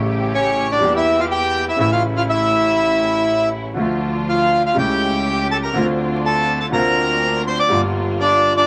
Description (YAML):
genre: tango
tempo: 122 BPM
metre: 4/4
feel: rubato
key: unclear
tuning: A4 = 439 Hz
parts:
  - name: clear concert grand piano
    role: accompaniment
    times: 0.0-8.6 s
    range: G1 to G4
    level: -24 LUFS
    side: equal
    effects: none
  - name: rich studio string section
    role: stabs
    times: 0.0-8.6 s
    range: F3 to G4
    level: -30 LUFS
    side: equal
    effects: none
  - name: clear double bass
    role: bass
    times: 0.0-8.6 s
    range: G1 to E2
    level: -30 LUFS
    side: equal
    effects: none
  - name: bandoneon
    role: melody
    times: 0.3-8.7 s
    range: C#4 to D6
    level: -19 LUFS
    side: equal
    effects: none
room: wet small room reverb, RT60 0.5 s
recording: vinyl crackle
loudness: -18 LUFS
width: mono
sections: 0.0-8.7 A section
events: none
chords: 0.0 A7; 0.8 Edim; 1.8 A; 3.8 Dm; 4.8 A7/C#; 5.7 Dm7; 6.7 Bbadd9/D; 7.7 Gm7